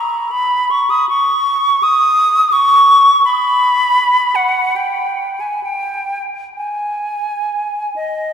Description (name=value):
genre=classical, free, expressive piece for unaccompanied flute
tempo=49-87 BPM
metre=3/4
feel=rubato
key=G# minor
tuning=A4 = 440 Hz
part: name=bright concert flute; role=solo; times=0.0-8.3 s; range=D#5 to D#6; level=-12 LUFS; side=equal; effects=none
room=wet church reverb, RT60 3.6 s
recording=none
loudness=-12 LUFS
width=side -8 dB against mid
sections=0.0-8.3 A section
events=none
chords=none